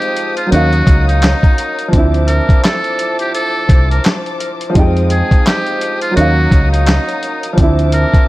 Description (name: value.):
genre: hip hop, boom-bap hip-hop.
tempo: 85 BPM.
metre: 4/4.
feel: swing 59% on 16ths.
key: unclear.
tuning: A4 = 439 Hz.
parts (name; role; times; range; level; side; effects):
trumpet with metal mute; melody; 0.0-8.3 s; Eb4 to Bb4; -19 LUFS; equal; high-pass filter, low-pass filter, digital delay.
dark upright piano; accompaniment; 0.0-8.3 s; F3 to G5; -18 LUFS; right 2 dB; high-pass filter, low-pass filter.
warm studio string section; sustained chords; 0.0-8.3 s; Gb4 to Eb6; -25 LUFS; left 4 dB; high-pass filter, low-pass filter.
dusty soul sampler-style drum kit; drums; 0.0-8.3 s; handclaps, hi-hat, kick drum, snare drum; -12 LUFS; equal; none.
deep dub fingered electric bass; bass; 0.5-8.0 s; C2 to F2; -13 LUFS; equal; none.
room: small room ambience.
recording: vinyl crackle.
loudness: -10 LUFS.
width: side -18 dB against mid.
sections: 0.0-8.3 A section.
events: none.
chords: 0.0 Fm7; 0.5 Ebm7; 1.9 Dm7; 4.8 Fm7; 6.2 Ebm7; 7.6 Dm7.